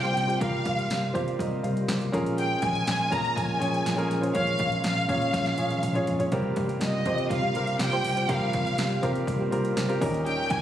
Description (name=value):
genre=piano-driven pop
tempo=122 BPM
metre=4/4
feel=straight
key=unclear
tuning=A4 = 440 Hz
part: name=warm studio violin section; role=melody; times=0.0-10.6 s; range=Eb5 to Bb5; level=-28 LUFS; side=equal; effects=none
part: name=clear concert grand piano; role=accompaniment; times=0.0-10.6 s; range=G2 to F5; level=-30 LUFS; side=left 1 dB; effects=none
part: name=tonewheel organ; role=sustained chords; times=0.0-10.6 s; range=C3 to F4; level=-36 LUFS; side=right 1 dB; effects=none
part: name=vintage muted picked electric bass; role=bass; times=0.0-10.6 s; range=Bb1 to C3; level=-30 LUFS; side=equal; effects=none
part: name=house drum kit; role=drums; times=0.0-10.6 s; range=hi-hat, kick drum, snare drum, toms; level=-33 LUFS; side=equal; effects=overdrive
part: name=fingerpicked steel-string acoustic guitar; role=riff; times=6.3-10.6 s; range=C3 to G4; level=-35 LUFS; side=right 8 dB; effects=none
room=light reverb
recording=recorded on a phone in the room, studio reverb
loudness=-24 LUFS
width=side -11 dB against mid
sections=0.0-10.6 A section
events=drum fill 5.3-6.3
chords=0.0 C7sus4; 2.1 Bbm7; 6.3 C7sus4; 10.0 Eb7